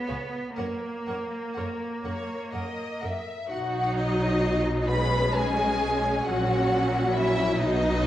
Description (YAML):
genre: classical, slow romantic movement for string orchestra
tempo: 40-46 BPM (dotted quarters)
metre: 6/8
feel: rubato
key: B major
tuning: A4 = 440 Hz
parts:
  - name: clear chamber cello section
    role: bass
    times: 0.0-8.1 s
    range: A#2 to B3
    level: -32 LUFS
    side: right 1 dB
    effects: none
  - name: rich chamber violin section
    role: melody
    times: 0.1-8.1 s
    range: D#5 to B5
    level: -29 LUFS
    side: left 2 dB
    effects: none
  - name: warm chamber violin section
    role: second line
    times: 0.1-8.1 s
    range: D#4 to E5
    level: -31 LUFS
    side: left 1 dB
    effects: none
  - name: rich symphonic viola section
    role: accompaniment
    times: 0.1-8.1 s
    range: F#3 to A#4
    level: -28 LUFS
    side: equal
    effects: none
  - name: clear chamber double bass section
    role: bass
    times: 0.1-8.1 s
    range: A#1 to F#2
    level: -32 LUFS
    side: right 1 dB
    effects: none
room: wet recital hall reverb, RT60 1.6 s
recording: worn, warbling old tape, cassette tape, warbly pitch drift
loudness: -24 LUFS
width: side -12 dB against mid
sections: 0.0-3.5 A section; 3.5-8.1 B section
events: none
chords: 0.0 C#7(no3); 0.6 F#; 3.5 B; 6.3 F#/A#; 7.6 B